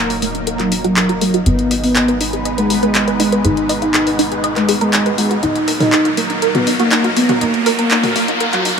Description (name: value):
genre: melodic techno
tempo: 121 BPM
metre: 4/4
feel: straight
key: Eb minor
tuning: A4 = 439 Hz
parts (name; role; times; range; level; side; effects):
- expressive synth lead; melody; 0.0-8.7 s; Gb3 to Eb4; -17 LUFS; equal; chorus, dub echo
- lush unison pad; sustained chords; 0.0-8.8 s; Gb3 to Cb5; -22 LUFS; right 1 dB; chorus, phaser
- wide unison pluck; arpeggios; 0.0-8.7 s; Bb3 to Ab5; -21 LUFS; right 2 dB; flanger, ping-pong delay
- plucky analog bass; bass; 0.0-8.8 s; Eb1 to Ab1; -24 LUFS; equal; none
- riser; sound effects; 0.2-8.8 s; none; -24 LUFS; equal; none
- house drum kit; drums; 0.1-8.8 s; handclaps, hi-hat, toms; -19 LUFS; left 1 dB; none
room: light reverb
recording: high-pass filter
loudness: -13 LUFS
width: side -6 dB against mid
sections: 0.0-8.8 A section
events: build-up 0.0-8.8; filter sweep on synth arpeggio sound 0.0-8.8; filter sweep on analog synth lead 0.0-8.8; riser 0.2-8.8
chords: 0.0 Ebm; 1.5 Abm; 5.4 Ebm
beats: 0.47 0.97 | 1.46 1.96 2.46 2.95 | 3.45 3.94 4.44 4.93 | 5.43 5.93 6.42 6.92 | 7.41 7.91 8.40